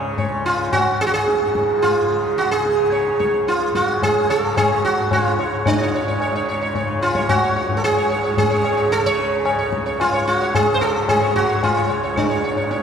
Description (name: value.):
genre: indian classical, Hindustani.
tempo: 110 BPM.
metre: 3/4.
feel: straight.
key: C# major.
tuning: A4 = 438 Hz.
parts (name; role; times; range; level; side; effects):
tanpura; drone; 0.0-12.8 s; C#2 to C#3; -29 LUFS; left 1 dB; none.
sitar; melody; 0.2-12.8 s; D4 to C#5; -18 LUFS; right 2 dB; none.
tabla; percussion; 0.2-12.8 s; none; -23 LUFS; left 3 dB; none.
room: wet cathedral reverb, RT60 6.7 s.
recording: recorded in a church or concert hall.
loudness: -16 LUFS.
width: side -7 dB against mid.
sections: 0.0-5.7 A section; 5.7-12.8 B section.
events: none.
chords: none.